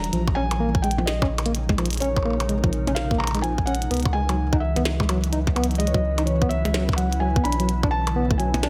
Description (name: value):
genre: IDM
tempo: 127 BPM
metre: 4/4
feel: swing 62% on 16ths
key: unclear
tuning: A4 = 436 Hz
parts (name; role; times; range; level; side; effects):
- felt-muted upright piano; melody; 0.0-8.6 s; C#5 to B5; -31 LUFS; equal; vintage 12-bit sampler grit, digital delay
- glassy FM pad; sustained chords; 0.0-8.7 s; B#2 to B4; -33 LUFS; equal; ensemble chorus, built-in reverb, vintage 12-bit sampler grit, sidechain pumping
- warm sub bass; bass; 0.0-8.7 s; E1 to C#2; -28 LUFS; equal; none
- glitchy drum kit; drums; 0.0-8.7 s; hi-hat, percussion blips, snare drum; -31 LUFS; equal; digital delay
- tine electric piano; arpeggios; 0.1-8.7 s; E#3 to D#4; -29 LUFS; equal; delay
- electronic kick drum; drums; 0.3-8.4 s; none; -25 LUFS; equal; none
room: light reverb, digital ambience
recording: none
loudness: -23 LUFS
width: mono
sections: 0.0-8.7 A section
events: none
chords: 0.1 A#m11; 3.9 C#m11; 7.5 Bm11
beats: | 0.13 0.60 1.07 1.55 | 2.02 2.49 2.96 3.44 | 3.91 4.38 4.85 5.33 | 5.80 6.27 6.74 7.22 | 7.69 8.16 8.63